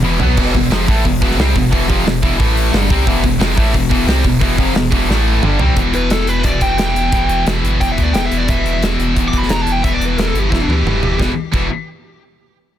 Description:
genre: heavy metal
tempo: 177 BPM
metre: 4/4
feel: straight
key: E minor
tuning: A4 = 441 Hz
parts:
  - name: distorted electric guitar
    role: riff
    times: 0.0-5.8 s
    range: E2 to C4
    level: -21 LUFS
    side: equal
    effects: overdrive
  - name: scooped high-gain guitar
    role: riff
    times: 0.0-11.7 s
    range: E2 to C4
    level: -20 LUFS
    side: left 9 dB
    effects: distortion
  - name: scooped high-gain guitar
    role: riff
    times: 0.0-11.7 s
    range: E2 to C4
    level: -21 LUFS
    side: right 11 dB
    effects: distortion
  - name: pure sine sub bass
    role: bass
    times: 0.0-11.7 s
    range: D1 to D2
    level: -18 LUFS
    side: equal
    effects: none
  - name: modern studio drum kit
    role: drums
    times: 0.0-11.6 s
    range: crash cymbal, hi-hat, kick drum, snare drum, toms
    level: -18 LUFS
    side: equal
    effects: none
  - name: high-gain lead guitar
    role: melody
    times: 5.9-11.2 s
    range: D4 to D6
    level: -21 LUFS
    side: equal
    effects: distortion
room: small room ambience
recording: dense, heavily limited modern master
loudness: -12 LUFS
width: side -11 dB against mid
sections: 0.0-5.8 A section; 5.8-11.2 B section; 11.2-12.6 C section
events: drum fill 0.0-0.4, 5.1-5.8, 10.5-11.2; lead electric guitar solo 5.8-11.2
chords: 0.0 Em; 2.4 A5; 2.7 Em; 5.1 A5; 5.4 Gsus4; 5.8 Em; 11.2 E5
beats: 0.04 | 0.38 0.72 1.05 1.39 | 1.72 2.06 2.40 2.73 | 3.07 3.41 3.74 4.08 | 4.42 4.75 5.09 5.43 | 5.77 6.11 6.44 6.78 | 7.12 7.46 7.80 8.14 | 8.47 8.81 9.15 9.49 | 9.83 10.17 10.51 10.85 | 11.19 11.53

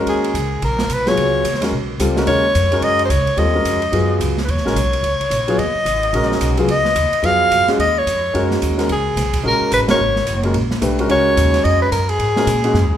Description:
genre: modal jazz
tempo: 218 BPM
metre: 4/4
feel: swing 61% on 8ths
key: G# dorian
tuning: A4 = 440 Hz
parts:
  - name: warm grand piano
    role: accompaniment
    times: 0.0-12.7 s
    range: F#3 to B4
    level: -20 LUFS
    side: left 1 dB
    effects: none
  - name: upright bass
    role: bass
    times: 0.0-13.0 s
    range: F#1 to A#2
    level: -20 LUFS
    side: equal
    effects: none
  - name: clear soprano saxophone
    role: melody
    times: 0.1-13.0 s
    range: G#4 to E#5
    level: -18 LUFS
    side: equal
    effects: none
  - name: open jazz drum kit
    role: drums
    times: 0.1-12.8 s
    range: hi-hat, kick drum, ride cymbal, snare drum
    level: -26 LUFS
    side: right 3 dB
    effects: none
room: moderate recital hall reverb, RT60 1.6 s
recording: recorded in a church or concert hall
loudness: -14 LUFS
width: side -10 dB against mid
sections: 0.0-13.0 A section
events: band accent 9.9; drum fill 12.7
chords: 0.0 G#9sus4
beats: | 0.07 0.35 0.62 0.90 | 1.17 1.45 1.73 2.00 | 2.28 2.55 2.83 3.10 | 3.38 3.65 3.93 4.21 | 4.48 4.76 5.03 5.31 | 5.58 5.86 6.13 6.41 | 6.68 6.96 7.24 7.51 | 7.79 8.06 8.34 8.61 | 8.89 9.17 9.44 9.72 | 9.99 10.27 10.54 10.82 | 11.10 11.37 11.65 11.92 | 12.20 12.47 12.75

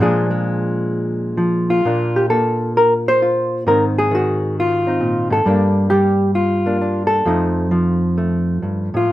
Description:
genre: solo jazz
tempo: 133 BPM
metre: 4/4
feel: swing 66% on 8ths, rubato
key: Bb major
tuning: A4 = 440 Hz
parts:
  - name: hollow-body jazz guitar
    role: solo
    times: 0.0-9.1 s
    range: F2 to C5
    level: -15 LUFS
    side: equal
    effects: none
room: moderate club reverb, RT60 0.8 s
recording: minimal, uncompressed stereo recording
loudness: -15 LUFS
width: side -15 dB against mid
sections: 0.0-1.9 A section; 1.9-9.1 B section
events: hollow-body jazz guitar solo 0.0-1.9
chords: 0.0 Bb7; 1.9 Bbmaj9; 3.7 Ab13; 5.4 Gm9; 7.3 F7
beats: | 0.01 0.46 0.92 1.39 | 1.85 2.31 2.76 3.21 | 3.66 4.11 4.56 5.00 | 5.45 5.90 6.35 6.80 | 7.25 7.71 8.16 8.62 | 9.09

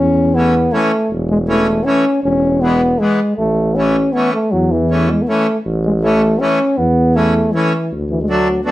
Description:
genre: alpine folk, alpine dance band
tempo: 159 BPM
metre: 3/4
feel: swing 54% on 8ths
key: A major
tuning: A4 = 440 Hz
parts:
  - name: warm euphonium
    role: melody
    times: 0.0-8.7 s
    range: E3 to C#4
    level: -15 LUFS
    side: equal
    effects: none
  - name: mellow tuba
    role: bass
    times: 0.0-8.6 s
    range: E1 to E2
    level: -17 LUFS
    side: equal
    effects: none
  - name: accordion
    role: accompaniment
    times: 0.4-8.7 s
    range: E3 to D4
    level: -19 LUFS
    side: left 1 dB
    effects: none
room: moderate studio reverb, RT60 0.6 s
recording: heard from further back in the room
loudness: -12 LUFS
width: side -16 dB against mid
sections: 0.0-8.7 A section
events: none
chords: 0.0 A; 2.2 E; 3.4 A; 7.9 D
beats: 0.35 0.73 | 1.11 1.49 1.87 | 2.25 2.63 3.01 | 3.39 3.78 4.16 | 4.53 4.91 5.29 | 5.66 6.03 6.41 | 6.78 7.16 7.54 | 7.92 8.30 8.67

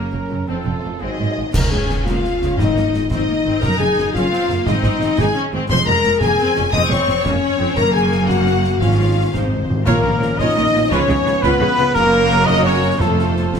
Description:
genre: cinematic, heroic adventure film score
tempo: 115 BPM (dotted quarters)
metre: 6/8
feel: straight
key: Db major, Bb minor from 9.9 s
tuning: A4 = 440 Hz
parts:
  - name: rich symphonic violin section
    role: melody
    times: 0.0-13.5 s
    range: Ab4 to Eb6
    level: -26 LUFS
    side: left 2 dB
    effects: none
  - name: rich symphonic violin section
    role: second line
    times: 0.0-13.5 s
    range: Db4 to Eb6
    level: -25 LUFS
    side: left 3 dB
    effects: none
  - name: rich symphonic viola section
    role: accompaniment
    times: 0.0-13.6 s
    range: Gb3 to Db5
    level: -25 LUFS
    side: left 1 dB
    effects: none
  - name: dark trombone section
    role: sustained chords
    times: 0.0-1.4, 9.8-13.6 s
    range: Db3 to Db4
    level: -26 LUFS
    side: right 4 dB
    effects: none
  - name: clear trumpet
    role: stabs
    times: 0.0-1.4, 9.9-13.5 s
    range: Ab4 to Eb5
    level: -24 LUFS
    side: right 3 dB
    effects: none
  - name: clear studio double bass section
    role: bass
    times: 0.0-13.6 s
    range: F1 to Db2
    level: -23 LUFS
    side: right 3 dB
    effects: none
  - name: rich symphonic cello section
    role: bass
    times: 0.0-13.6 s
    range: F2 to Db3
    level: -24 LUFS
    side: right 2 dB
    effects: none
  - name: mellow French horn section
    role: sustained chords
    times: 1.0-13.5 s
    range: A3 to Eb5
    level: -20 LUFS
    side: left 4 dB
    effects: none
  - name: concert snare drum, clash cymbals and concert bass drum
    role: drums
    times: 1.5-13.6 s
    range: none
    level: -26 LUFS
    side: equal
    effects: none
  - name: clash cymbals and concert bass drum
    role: percussion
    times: 1.5-2.2 s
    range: none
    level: -25 LUFS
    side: right 1 dB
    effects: none
  - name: timpani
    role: percussion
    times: 1.5-3.1, 8.8-10.4, 13.0-13.5 s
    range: F2 to Db3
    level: -23 LUFS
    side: left 1 dB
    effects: none
  - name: hollow concert flute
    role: second line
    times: 9.9-13.5 s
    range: A5 to Eb6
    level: -24 LUFS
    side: left 1 dB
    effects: none
  - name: mellow clarinet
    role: second line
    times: 9.9-13.5 s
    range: A4 to Eb5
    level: -24 LUFS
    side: equal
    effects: none
room: moderate scoring stage reverb, RT60 1.7 s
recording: none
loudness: -14 LUFS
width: side -6 dB against mid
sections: 0.0-1.5 A section; 1.5-9.9 B section; 9.9-13.6 C section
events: band accent 1.5-1.9; timpani fill 9.3-9.9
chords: 0.5 F; 1.0 Ab7; 1.5 Db; 2.6 Ab5; 3.6 Ebm/Gb; 4.7 Ab; 5.7 Fm; 7.8 Gbadd9; 8.8 Db/Ab; 9.9 Bbm; 10.9 Db7; 12.0 Gb; 13.0 F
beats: | 0.49 1.01 | 1.54 2.07 | 2.59 3.11 | 3.62 4.14 | 4.66 5.18 | 5.70 6.21 | 6.73 7.25 | 7.77 8.29 | 8.82 9.35 | 9.88 10.40 | 10.92 11.44 | 11.95 12.47 | 13.00 13.53

